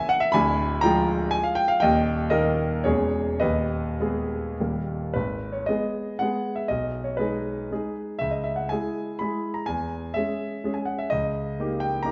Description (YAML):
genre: classical, romantic triple-time dance for piano with dotted rhythms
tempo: 96-135 BPM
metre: 3/4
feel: rubato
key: G# minor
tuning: A4 = 440 Hz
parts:
  - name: clear grand piano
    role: solo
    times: 0.0-12.1 s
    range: D1 to B5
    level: -26 LUFS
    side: equal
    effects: none
room: moderate scoring stage reverb, RT60 1.5 s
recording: nothing above 7.5 kHz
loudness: -26 LUFS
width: mono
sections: 0.0-5.2 A section; 5.2-12.1 B section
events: none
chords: 0.3 Ddim7; 1.8 D#; 2.9 C#m/E; 3.4 G#m/D#; 4.6 D#; 5.2 G#m; 6.7 G#m/B; 8.2 C#m; 9.7 C#m/E; 11.1 D#7/C#